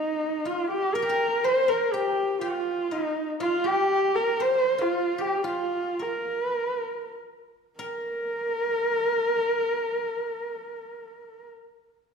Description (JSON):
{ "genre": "mongolian traditional, Mongolian folk", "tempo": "91-122 BPM", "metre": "4/4", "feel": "straight", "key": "Bb zhi mode", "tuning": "A4 = 440 Hz", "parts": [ { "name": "warm horsehead fiddle", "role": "melody", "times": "0.0-11.5 s", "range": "Eb4 to C5", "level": "-25 LUFS", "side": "equal", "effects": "none" }, { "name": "guzheng", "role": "second line", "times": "0.0-11.5 s", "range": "Eb4 to C5", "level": "-32 LUFS", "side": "left 3 dB", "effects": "none" } ], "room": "wet recital hall reverb, RT60 1.5 s", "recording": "recorded in a church or concert hall", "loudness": "-24 LUFS", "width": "side -6 dB against mid", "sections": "0.0-7.8 A section; 7.8-12.1 B section", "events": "slowing down 3.4-7.8", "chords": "none" }